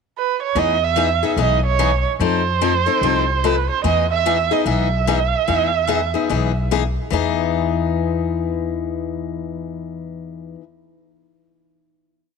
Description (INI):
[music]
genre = acoustic string swing (jazz manouche)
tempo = 146 BPM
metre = 4/4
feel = swing 62% on 8ths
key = E major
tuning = A4 = 445 Hz
[part]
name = dark erhu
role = melody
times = 0.2-6.7 s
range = B4 to E5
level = -19 LUFS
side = right 11 dB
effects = none
[part]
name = picked steel-string acoustic guitar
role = accompaniment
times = 0.6-10.6 s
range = E3 to A4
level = -21 LUFS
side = left 13 dB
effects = none
[part]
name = upright bass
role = bass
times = 0.6-10.5 s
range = B1 to F2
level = -23 LUFS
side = equal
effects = none
[sound]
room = light reverb, small room ambience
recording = 1960s-style stereo with parts hard left and right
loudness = -17 LUFS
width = side -5 dB against mid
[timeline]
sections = 0.0-0.6 pickup bar; 0.6-7.1 A section; 7.1-10.4 final chord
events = none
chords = 0.0 N.C.; 0.6 Emaj7; 2.2 F7; 3.8 Emaj7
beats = 0.15 | 0.56 0.97 1.38 1.79 | 2.20 2.61 3.02 3.43 | 3.84 4.25 4.66 5.07 | 5.48 5.89 6.30 6.71 | 7.11 7.52 7.93 8.34 | 8.75 9.16 9.57 9.98